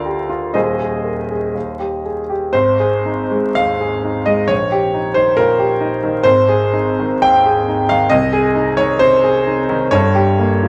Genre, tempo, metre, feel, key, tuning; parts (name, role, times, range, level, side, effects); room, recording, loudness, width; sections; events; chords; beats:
classical, romantic character piece for solo piano; 57-70 BPM; 2/4; rubato; Ab major; A4 = 440 Hz
warm concert grand piano; solo; 0.0-10.7 s; Eb1 to G5; -16 LUFS; equal
moderate stone room reverb, RT60 1.0 s; vinyl crackle; -16 LUFS; mono
0.0-2.5 A section; 2.5-10.7 B section
0.0 Bb/D; 0.5 Ab/Eb; 1.5 Eb; 2.5 Ab; 4.5 Eb/Bb; 6.3 Ab; 8.1 Ab/C; 9.9 Gdim
| 0.54 1.54 | 2.54 3.56 | 4.50 5.38 | 6.27 7.23 | 8.11 9.00 | 9.91